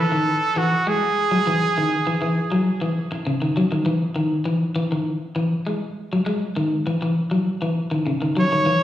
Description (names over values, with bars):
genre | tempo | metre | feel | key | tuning
afrobeat | 100 BPM | 4/4 | straight | unclear | A4 = 440 Hz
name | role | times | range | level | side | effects
clear trumpet | melody | 0.0-2.7, 8.4-8.8 s | F#4 to C#5 | -21 LUFS | right 2 dB | plate reverb, slapback echo, tape echo
electric guitar at the edge of break-up | arpeggios | 0.0-8.8 s | C#3 to G#3 | -21 LUFS | left 1 dB | plate reverb, slapback echo
room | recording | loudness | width
wet club reverb, RT60 0.6 s | live gig heard through the venue's PA, recital hall reverb, studio ambience | -19 LUFS | side -12 dB against mid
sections
0.0-8.8 A section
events
none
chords
0.0 F#m9; 1.2 Emaj7; 3.6 N.C.; 6.0 Emaj7